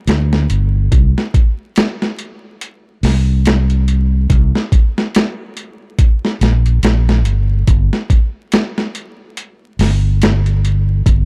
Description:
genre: trip hop.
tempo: 71 BPM.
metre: 4/4.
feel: swing 57% on 16ths.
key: unclear.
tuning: A4 = 439 Hz.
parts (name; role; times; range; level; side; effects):
fingered electric bass; bass; 0.1-11.3 s; G1 to D2; -15 LUFS; equal; none.
boom bap sampler-style drum kit; drums; 0.1-11.3 s; hi-hat, kick drum, snare drum; -16 LUFS; equal; overdrive.
room: little or no reverb.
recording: dark, warm production, vinyl crackle.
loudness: -14 LUFS.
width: mono.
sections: 0.0-11.3 A section.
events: none.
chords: none.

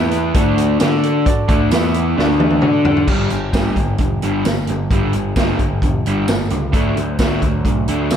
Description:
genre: classic rock.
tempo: 131 BPM.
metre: 4/4.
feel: straight.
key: unclear.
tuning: A4 = 440 Hz.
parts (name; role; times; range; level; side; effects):
warm upright piano; accompaniment; 0.0-3.0 s; E4 to E5; -25 LUFS; right 3 dB; slapback echo.
crunchy overdriven guitar; riff; 0.0-8.2 s; G2 to D5; -21 LUFS; right 8 dB; none.
raw garage guitar; riff; 0.0-8.2 s; G2 to D5; -22 LUFS; left 12 dB; overdrive, slapback echo.
growling picked electric bass; bass; 0.0-8.2 s; E1 to D3; -21 LUFS; equal; overdrive.
vintage drum kit; drums; 0.1-8.2 s; crash cymbal, hi-hat, kick drum, snare drum, tambourine, toms; -18 LUFS; equal; none.
room: light reverb, small room ambience.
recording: none.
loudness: -14 LUFS.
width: side -8 dB against mid.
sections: 0.0-3.1 A section; 3.1-8.2 B section.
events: drum fill 2.2-3.1.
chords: 0.3 D; 1.7 E5; 2.2 D; 3.1 G5; 6.7 D.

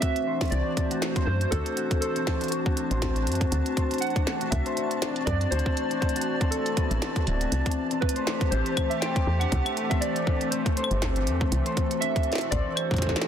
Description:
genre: IDM.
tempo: 120 BPM.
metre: 4/4.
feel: swing 56% on 16ths.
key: unclear.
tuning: A4 = 443 Hz.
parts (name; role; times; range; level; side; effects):
warbly lo-fi synth keys; melody; 0.0-13.3 s; F#4 to G5; -32 LUFS; right 2 dB; chorus, tape echo.
hollow soft pad; sustained chords; 0.0-13.3 s; E3 to D5; -32 LUFS; right 1 dB; chorus.
concert harp; arpeggios; 0.0-13.3 s; B3 to C5; -31 LUFS; left 6 dB; vintage 12-bit sampler grit, low-pass filter, ping-pong delay.
electronic kick drum; drums; 0.0-13.2 s; none; -27 LUFS; equal; overdrive.
glitchy drum kit; drums; 0.0-13.3 s; claves, hi-hat, snare drum; -32 LUFS; right 1 dB; overdrive.
flickering grainy texture; texture; 0.3-13.3 s; A5; -40 LUFS; equal; built-in reverb.
woody FM bass; bass; 0.5-12.6 s; D1 to F#2; -26 LUFS; equal; none.
room: light reverb, digital ambience.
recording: dense, heavily limited modern master, faint mains hum.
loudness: -24 LUFS.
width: side -9 dB against mid.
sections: 0.0-13.3 A section.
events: none.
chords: 0.0 D9; 7.5 C6.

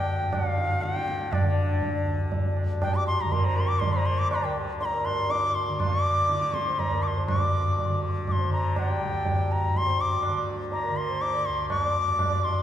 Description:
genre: indian classical, Hindustani.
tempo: 121 BPM.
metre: 3/4.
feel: straight.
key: unclear.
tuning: A4 = 440 Hz.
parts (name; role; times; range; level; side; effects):
bright reedy bansuri; melody; 0.0-12.6 s; D5 to D6+25c; -27 LUFS; left 1 dB; none.
tanpura; drone; 0.0-12.6 s; D2 to D3; -33 LUFS; equal; none.
tabla; percussion; 0.3-12.6 s; none; -27 LUFS; equal; none.
hand-pumped harmonium; second line; 1.5-12.6 s; D4 to F5; -35 LUFS; right 4 dB; none.
room: wet church reverb, RT60 3.6 s.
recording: recorded in a church or concert hall.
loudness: -23 LUFS.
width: side -10 dB against mid.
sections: 0.0-7.3 A section; 7.3-12.6 B section.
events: none.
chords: none.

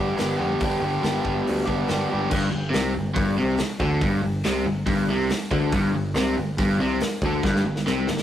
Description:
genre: garage rock duo or trio.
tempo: 141 BPM.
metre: 4/4.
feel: straight.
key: G major.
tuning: A4 = 439 Hz.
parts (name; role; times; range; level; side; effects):
overdriven electric guitar; riff; 0.0-8.2 s; G2 to G4; -23 LUFS; left 1 dB; none.
picked electric bass; bass; 0.0-8.2 s; F1 to D2; -27 LUFS; equal; none.
raw garage drum kit; drums; 0.2-8.2 s; crash cymbal, hi-hat, kick drum, snare drum; -28 LUFS; equal; none.
room: moderate stone room reverb, RT60 1.0 s.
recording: rough rehearsal-room recording, tube saturation.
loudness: -21 LUFS.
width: side -11 dB against mid.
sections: 0.0-2.3 A section; 2.3-8.2 B section.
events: drum fill 7.4-8.2.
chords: 0.0 G; 2.3 G5.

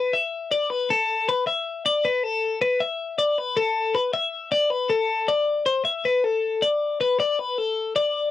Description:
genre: rock.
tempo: 315 BPM (eighths).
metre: 7/8.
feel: straight.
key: unclear.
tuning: A4 = 445 Hz.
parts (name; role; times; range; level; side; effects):
twelve-string electric guitar; solo; 0.0-8.3 s; A4 to E5; -21 LUFS; left 3 dB; cassette tape.
room: moderate booth ambience, RT60 0.2 s.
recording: home recording on cassette.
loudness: -21 LUFS.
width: side -13 dB against mid.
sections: 0.0-4.7 A section; 4.7-8.3 B section.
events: none.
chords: none.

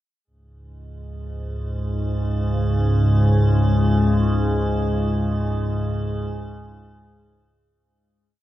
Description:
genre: dark ambient drone.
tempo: free time.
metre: none.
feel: none.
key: unclear.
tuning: A4 = 439 Hz.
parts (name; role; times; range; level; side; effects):
metallic inharmonic drone; texture; 1.8-7.8 s; G#3 to G#4; -29 LUFS; left 1 dB; chorus, built-in reverb.
organ-like drone; drone; 1.2-7.9 s; C#2 to G#2; -19 LUFS; equal; ensemble chorus, built-in reverb, phaser.
room: moderate huge ambient reverb, RT60 7.2 s.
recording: dark, warm production.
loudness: -18 LUFS.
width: side -14 dB against mid.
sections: 0.3-7.8 A section.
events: fade-in on synth drone 0.3-7.8; fade-out 4.0-7.8.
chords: 0.3 C#5.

